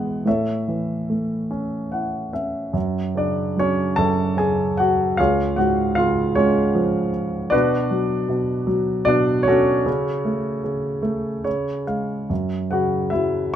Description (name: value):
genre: classical, lyrical solo piano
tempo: 71-78 BPM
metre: 3/4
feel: rubato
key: F# minor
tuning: A4 = 445 Hz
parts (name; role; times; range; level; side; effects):
- warm grand piano; solo; 0.0-13.6 s; C#2 to A5; -19 LUFS; equal; none
room: light reverb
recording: none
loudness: -19 LUFS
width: side -10 dB against mid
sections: 0.0-2.8 A section; 2.8-13.6 B section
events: grand piano fill 1.5-2.8, 11.0-12.3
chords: 0.3 A; 2.8 F#sus2; 5.2 C#; 7.5 Bm; 9.9 F#m/C#; 11.5 C#; 12.3 F#5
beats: | 0.26 1.08 1.92 | 2.75 3.57 4.38 | 5.18 5.98 6.76 | 7.53 8.31 9.09 | 9.87 10.65 11.46 | 12.31 13.14